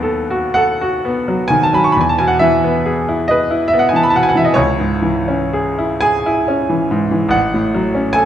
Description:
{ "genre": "classical, romantic nocturne for solo piano", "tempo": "36-49 BPM (dotted quarters)", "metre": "12/8", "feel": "rubato", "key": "E major", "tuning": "A4 = 441 Hz", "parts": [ { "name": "bright grand piano", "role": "solo", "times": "0.0-8.3 s", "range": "A1 to C#6", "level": "-13 LUFS", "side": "equal", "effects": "none" } ], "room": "wet recital hall reverb, RT60 1.4 s", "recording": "dark, warm production", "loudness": "-13 LUFS", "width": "side -10 dB against mid", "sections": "0.0-8.3 A section", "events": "none", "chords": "0.0 B7/D#; 2.0 E; 4.6 C#m; 7.3 F#m/A" }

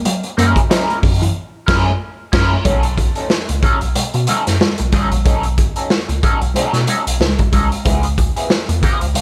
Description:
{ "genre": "funk", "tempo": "92 BPM", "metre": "4/4", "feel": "swing 56% on 16ths", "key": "unclear", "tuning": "A4 = 440 Hz", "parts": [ { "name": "mellow electric guitar", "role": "riff", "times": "0.0-1.3 s", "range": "E3 to A#3", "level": "-23 LUFS", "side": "equal", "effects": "none" }, { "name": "raw garage drum kit", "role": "drums", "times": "0.1-9.2 s", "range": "crash cymbal, hi-hat, kick drum, snare drum", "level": "-19 LUFS", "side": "equal", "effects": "none" }, { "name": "congas", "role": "percussion", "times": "0.1-9.2 s", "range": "none", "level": "-28 LUFS", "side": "equal", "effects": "none" }, { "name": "electric guitar at the edge of break-up", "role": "accompaniment", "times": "0.4-9.2 s", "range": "E#3 to A#4", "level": "-23 LUFS", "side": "equal", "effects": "wah, subtle chorus" }, { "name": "mellow tine electric piano", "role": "bass", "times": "0.4-9.2 s", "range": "A#1 to C#3", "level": "-21 LUFS", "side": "equal", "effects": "none" } ], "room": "light reverb", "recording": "none", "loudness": "-16 LUFS", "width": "mono", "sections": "0.0-2.7 A section; 2.7-9.2 B section", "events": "band accent 1.4-2.7", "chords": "0.0 F#9; 2.7 B9; 7.9 C#7#9" }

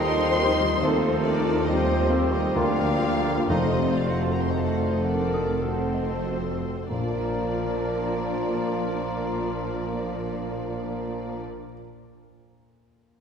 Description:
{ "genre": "classical", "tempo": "46-75 BPM", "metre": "3/4", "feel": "rubato", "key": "Bb major", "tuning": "A4 = 440 Hz", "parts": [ { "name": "warm grand piano", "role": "melody", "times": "0.0-13.2 s", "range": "D2 to Eb6", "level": "-30 LUFS", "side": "left 1 dB", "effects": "none" }, { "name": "warm symphonic violin section", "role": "melody", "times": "0.0-11.4 s", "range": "C5 to C6", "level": "-34 LUFS", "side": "left 3 dB", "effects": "none" }, { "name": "concert flute", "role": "second line", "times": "0.0-11.4 s", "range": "A4 to A5", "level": "-34 LUFS", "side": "equal", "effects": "none" }, { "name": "dark symphonic violin section", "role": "second line", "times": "0.0-11.4 s", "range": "C4 to C5", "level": "-35 LUFS", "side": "left 2 dB", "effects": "none" }, { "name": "mellow cor anglais", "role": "second line", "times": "0.0-11.4 s", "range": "F4 to Bb4", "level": "-33 LUFS", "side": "equal", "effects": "none" }, { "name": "warm symphonic viola section", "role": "accompaniment", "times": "0.0-11.4 s", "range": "Eb3 to Eb4", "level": "-32 LUFS", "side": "right 1 dB", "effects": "none" }, { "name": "warm French horn section", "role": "sustained chords", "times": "0.0-11.4 s", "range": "C4 to G4", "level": "-36 LUFS", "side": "left 4 dB", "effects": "none" }, { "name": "warm trombone section", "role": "sustained chords", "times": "0.0-11.4 s", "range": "Eb3 to Bb3", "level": "-35 LUFS", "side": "right 4 dB", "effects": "none" }, { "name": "dark trumpet section", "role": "stabs", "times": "0.0-11.4 s", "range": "Bb4 to Eb5", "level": "-34 LUFS", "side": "left 2 dB", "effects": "none" }, { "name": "rich symphonic cello section", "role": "bass", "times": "0.0-11.4 s", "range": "D2 to Bb2", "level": "-33 LUFS", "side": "right 1 dB", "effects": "none" }, { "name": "rich symphonic double bass section", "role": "bass", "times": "0.0-11.4 s", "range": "F1 to Eb2", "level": "-33 LUFS", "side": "right 2 dB", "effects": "none" }, { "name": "warm clarinet", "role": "second line", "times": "0.8-11.4 s", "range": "Eb4 to F4", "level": "-37 LUFS", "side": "left 3 dB", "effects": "none" }, { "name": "warm bassoon", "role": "accompaniment", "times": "0.8-11.4 s", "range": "F3 to Bb3", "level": "-34 LUFS", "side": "right 1 dB", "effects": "none" }, { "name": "timpani", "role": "percussion", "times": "3.5-11.6 s", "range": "F2 to Bb2", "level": "-34 LUFS", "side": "left 3 dB", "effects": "none" } ], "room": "wet scoring stage reverb, RT60 2.1 s", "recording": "heard from further back in the room", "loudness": "-22 LUFS", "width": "side -7 dB against mid", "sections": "0.0-6.9 A section; 6.9-10.7 B section", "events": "slowing down 0.0-6.9", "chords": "0.0 Cm/Eb; 0.8 F7/Eb; 2.6 Bb/D; 3.5 F7b9; 6.9 Bb" }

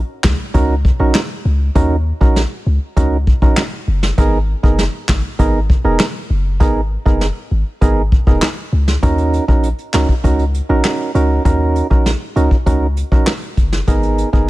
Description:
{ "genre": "dancehall", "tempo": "99 BPM", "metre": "4/4", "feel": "straight", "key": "unclear", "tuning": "A4 = 440 Hz", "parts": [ { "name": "warm 808-style bass", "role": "bass", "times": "0.0-14.5 s", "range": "E1 to D#2", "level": "-16 LUFS", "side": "equal", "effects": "none" }, { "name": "vintage brush drum kit", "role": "drums", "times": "0.2-14.5 s", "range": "handclaps, hi-hat, kick drum, rim click, snare drum", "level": "-15 LUFS", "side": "equal", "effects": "vintage 12-bit sampler grit" }, { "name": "percussive organ stab", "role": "accompaniment", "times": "0.5-14.5 s", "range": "B3 to A#4", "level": "-19 LUFS", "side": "right 3 dB", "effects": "chorus, sidechain pumping" } ], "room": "little or no reverb", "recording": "none", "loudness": "-13 LUFS", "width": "side -18 dB against mid", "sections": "0.0-9.0 A section; 9.0-14.5 B section", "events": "none", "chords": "0.0 D#m7; 4.2 G#madd9; 9.0 D#m7; 13.9 G#madd9" }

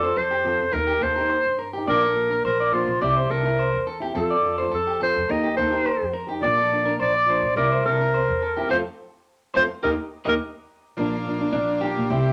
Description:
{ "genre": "highlife", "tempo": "106 BPM", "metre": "4/4", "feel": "straight", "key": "Bb major", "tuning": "A4 = 442 Hz", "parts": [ { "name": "clear clarinet", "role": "melody", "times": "0.0-10.3 s", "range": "F4 to Eb5", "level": "-24 LUFS", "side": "equal", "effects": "none" }, { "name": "fingerpicked plugged-in steel-string acoustic guitar", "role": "accompaniment", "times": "0.0-12.3 s", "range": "F3 to A4", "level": "-30 LUFS", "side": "equal", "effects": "none" }, { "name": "electric guitar at the edge of break-up", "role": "arpeggios", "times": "0.0-12.3 s", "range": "D4 to Eb5", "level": "-28 LUFS", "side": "equal", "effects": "spring reverb" }, { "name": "upright bass", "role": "bass", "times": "0.0-12.3 s", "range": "Bb1 to Bb2", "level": "-32 LUFS", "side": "equal", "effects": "none" }, { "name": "combo organ", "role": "sustained chords", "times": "11.0-12.3 s", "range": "Bb3 to G4", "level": "-33 LUFS", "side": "equal", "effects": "none" } ], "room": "wet studio reverb, RT60 0.5 s", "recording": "none", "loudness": "-23 LUFS", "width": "mono", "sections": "0.0-11.0 A section; 11.0-12.3 B section", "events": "band accent 8.7-11.0; clean electric guitar solo 11.0-12.3", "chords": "0.0 F; 0.7 Eb; 1.9 Bb; 3.0 C; 4.2 F; 5.3 Eb; 6.4 Bb; 7.6 C; 8.7 F; 9.8 Eb; 11.0 Bb" }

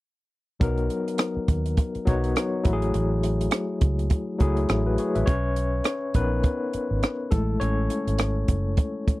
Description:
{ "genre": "lush 1970s-style soul", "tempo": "103 BPM", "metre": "4/4", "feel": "swing 58% on 16ths", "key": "B major", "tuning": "A4 = 440 Hz", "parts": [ { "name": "barky tine electric piano", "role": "accompaniment", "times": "0.6-9.2 s", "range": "F#3 to E5", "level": "-26 LUFS", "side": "left 2 dB", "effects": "overdrive, fast tremolo" }, { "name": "vintage muted fingered electric bass", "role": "bass", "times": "0.6-9.1 s", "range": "F#1 to D#2", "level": "-26 LUFS", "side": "right 1 dB", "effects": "none" }, { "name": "compact cocktail drum kit", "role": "drums", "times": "0.6-9.2 s", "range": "hi-hat, kick drum, rim click", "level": "-23 LUFS", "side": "right 1 dB", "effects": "none" } ], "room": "little or no reverb", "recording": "dry, close 1970s-style studio recording", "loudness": "-22 LUFS", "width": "side -18 dB against mid", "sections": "0.6-5.3 A section; 5.3-9.2 B section", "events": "tine electric piano solo 5.3-9.2", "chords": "0.6 Bmaj7; 2.7 F#m9/A; 5.3 Bmaj7; 7.3 F#m9" }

